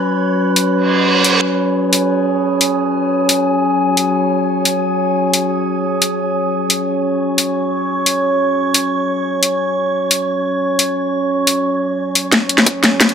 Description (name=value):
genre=dark technical drum and bass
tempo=176 BPM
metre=4/4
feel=straight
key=unclear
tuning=A4 = 440 Hz
part: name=metallic inharmonic drone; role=sustained chords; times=0.0-13.1 s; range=F#3 to C#5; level=-15 LUFS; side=equal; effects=chorus, built-in reverb, sidechain pumping
part: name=drum and bass drum kit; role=drums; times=0.6-13.1 s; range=hi-hat, snare drum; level=-12 LUFS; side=left 1 dB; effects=overdrive
part: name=reverse cymbal and riser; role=sound effects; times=0.8-1.4, 13.0-13.1 s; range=none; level=-16 LUFS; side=right 4 dB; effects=none
part: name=electronic kick drum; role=drums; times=12.3-13.1 s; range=none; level=-20 LUFS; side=equal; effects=overdrive, high-pass filter on kick
room=moderate digital room reverb, RT60 1.3 s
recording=faint mains hum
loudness=-13 LUFS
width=side -7 dB against mid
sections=0.0-12.3 A section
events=reverse cymbal 0.8-1.4; drum fill 12.3-13.1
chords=0.0 F#5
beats=| 0.05 0.39 0.73 1.07 | 1.42 1.76 2.10 2.44 | 2.78 3.12 3.46 3.80 | 4.14 4.48 4.82 5.17 | 5.51 5.85 6.19 6.53 | 6.87 7.21 7.55 7.89 | 8.23 8.57 8.91 9.26 | 9.60 9.94 10.28 10.62 | 10.96 11.30 11.64 11.98 | 12.32 12.66 13.01